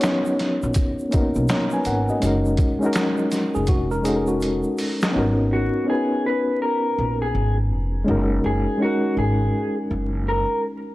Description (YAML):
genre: lo-fi hip hop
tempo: 82 BPM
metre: 4/4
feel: swing 63% on 16ths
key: unclear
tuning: A4 = 441 Hz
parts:
  - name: reed electric piano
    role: accompaniment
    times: 0.0-10.9 s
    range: G#3 to A#5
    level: -22 LUFS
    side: left 1 dB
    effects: fast tremolo, low-pass filter
  - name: boom bap sampler-style drum kit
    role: drums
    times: 0.0-5.1 s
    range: finger snaps, hi-hat, kick drum, snare drum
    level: -24 LUFS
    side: equal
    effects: vintage 12-bit sampler grit
  - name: egg shaker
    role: percussion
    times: 0.0-5.1 s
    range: none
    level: -45 LUFS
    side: right 2 dB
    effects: none
  - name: upright bass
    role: bass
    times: 0.6-10.4 s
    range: E#1 to B1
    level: -23 LUFS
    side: equal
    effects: transformer saturation
  - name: tine electric piano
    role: second line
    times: 3.5-5.1 s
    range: F#4 to A#4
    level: -28 LUFS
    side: equal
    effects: overdrive, fast stereo tremolo, low-pass filter, tape echo
  - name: electric guitar through a small old amp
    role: melody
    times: 5.5-10.6 s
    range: F#4 to B4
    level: -25 LUFS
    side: left 1 dB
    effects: low-pass filter
room: light reverb, digital ambience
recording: dry, gritty hardware recording, vinyl crackle, faint mains hum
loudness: -19 LUFS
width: side -17 dB against mid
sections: 0.0-5.1 A section; 5.1-10.9 B section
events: drum fill 3.7-5.1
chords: 0.0 G#m11; 2.2 F#6; 5.1 G#m11; 8.1 F#6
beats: 0.03 0.76 1.49 | 2.22 2.95 3.69 4.42 | 5.15 5.88 6.61 7.34 | 8.07 8.81 9.54 10.27